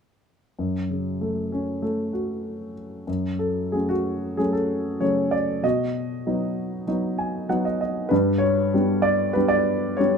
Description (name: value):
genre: classical, lyrical solo piano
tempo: 96 BPM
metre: 4/4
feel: rubato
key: F# minor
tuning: A4 = 441 Hz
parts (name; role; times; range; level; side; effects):
- dark grand piano; solo; 0.6-10.2 s; F#2 to G#5; -22 LUFS; equal; none
room: light reverb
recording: dark, warm production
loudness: -22 LUFS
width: side -6 dB against mid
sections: 0.6-3.1 A section; 3.1-10.2 B section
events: grand piano fill 6.9-8.1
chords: 0.6 F#m; 5.6 B; 8.1 G